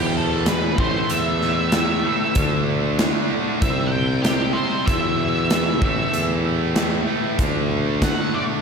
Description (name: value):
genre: quiet-loud alternative rock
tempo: 95 BPM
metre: 4/4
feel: straight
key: unclear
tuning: A4 = 440 Hz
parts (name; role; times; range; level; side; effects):
- octave-fuzz lead guitar; melody; 0.0-8.4 s; G4 to G5; -25 LUFS; equal; distortion, slapback echo
- thick fuzz guitar; riff; 0.0-8.6 s; E2 to D4; -27 LUFS; left 11 dB; distortion
- tight distorted guitar; riff; 0.0-8.6 s; E2 to D4; -26 LUFS; right 10 dB; distortion, slapback echo
- warm tuba; bass; 0.0-8.1 s; A1 to E2; -24 LUFS; equal; none
- big rock drum kit; drums; 0.5-8.2 s; hi-hat, kick drum, snare drum; -22 LUFS; equal; none
room: moderate concert hall reverb, RT60 2.3 s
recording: big arena sound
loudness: -18 LUFS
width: side -5 dB against mid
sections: 0.0-8.6 A section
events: lead electric guitar solo 0.0-8.6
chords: 0.0 E5; 0.8 A5; 2.4 D5; 3.6 C5; 4.9 E5; 5.8 A5; 7.4 D5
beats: 0.47 1.10 1.73 | 2.36 2.99 3.62 4.25 | 4.88 5.51 6.14 6.77 | 7.39 8.03